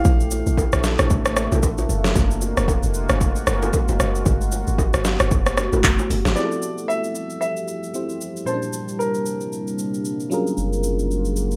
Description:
amapiano; 114 BPM; 4/4; swing 58% on 16ths; F major; A4 = 442 Hz
warm baby grand piano; melody; 0.0-0.8, 6.4-10.3 s; Bb4 to F5; -30 LUFS; equal; delay
deep dark ambient pad; sustained chords; 0.0-11.6 s; C3 to G4; -29 LUFS; equal; chorus, built-in reverb, sidechain pumping
deep log drum bass; bass; 0.0-6.4 s; F1 to Bb1; -24 LUFS; equal
deep house drum kit; drums; 0.0-11.6 s; handclaps, hi-hat, kick drum, rim click, shaker, snare drum; -24 LUFS; equal
congas and bongos; percussion; 0.1-6.2 s; -31 LUFS; equal
FM electric piano; accompaniment; 6.3-11.6 s; Bb2 to A5; -30 LUFS; equal; chorus
saturated sub bass; bass; 10.6-11.6 s; Gb1; -26 LUFS; equal
moderate studio reverb, RT60 0.6 s; rough home demo mix; -21 LUFS; mono
0.0-6.4 A section; 6.4-11.6 B section
drop 0.0-6.4
0.1 Bbmaj9; 1.9 Gbmaj9; 4.3 Gmaj9; 6.4 Fmaj9; 8.5 Bbmaj9; 10.3 Gbmaj9
| 0.05 0.58 1.10 1.63 | 2.15 2.68 3.21 3.73 | 4.26 4.79 5.31 5.84 | 6.37 6.89 7.42 7.95 | 8.47 9.00 9.52 10.05 | 10.58 11.10

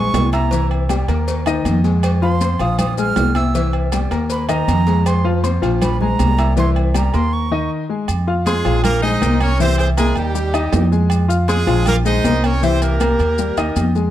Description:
latin, salsa; 158 BPM; 4/4; straight; F minor; A4 = 440 Hz
breathy bright concert flute; melody; 0.0-7.7 s; Bb5 to F6; -24 LUFS; right 6 dB
warm concert grand piano; accompaniment; 0.0-14.1 s; Eb3 to F6; -21 LUFS; left 5 dB
upright bass; bass; 0.0-14.1 s; Bb1 to F2; -18 LUFS; right 1 dB
congas; percussion; 0.1-14.1 s; -24 LUFS; left 3 dB
cowbell; percussion; 0.1-7.3 s; -28 LUFS; left 5 dB
maracas; percussion; 0.1-14.1 s; -34 LUFS; left 14 dB
timbales and agogo bells; percussion; 0.1-14.0 s; -27 LUFS; right 7 dB
brilliant horn section; melody; 8.5-13.9 s; G3 to Eb5; -20 LUFS; right 2 dB
studio reverb; dry, close 1970s-style studio recording; -14 LUFS; side -12 dB against mid
0.0-8.1 A section; 8.1-14.1 B section
flute solo 0.0-8.1; break 7.3-8.1
0.0 Bbm7; 0.5 C7; 1.3 Eb5; 2.0 Fm; 2.8 Bb5; 3.5 C7; 4.3 Eb5; 5.1 Fm; 5.8 Bb5; 6.6 C7; 7.3 Eb5; 8.1 Fm; 8.8 Bb5; 9.6 C7; 10.4 Eb; 11.1 Bb5; 12.6 C7; 13.4 Eb
0.14 | 0.52 0.90 1.27 1.65 | 2.03 2.41 2.79 3.17 | 3.54 3.92 4.30 4.68 | 5.06 5.44 5.82 6.19 | 6.57 6.95 7.33 7.71 | 8.09 8.46 8.84 9.22 | 9.60 9.98 10.36 10.73 | 11.11 11.49 11.87 12.25 | 12.63 13.01 13.38 13.76

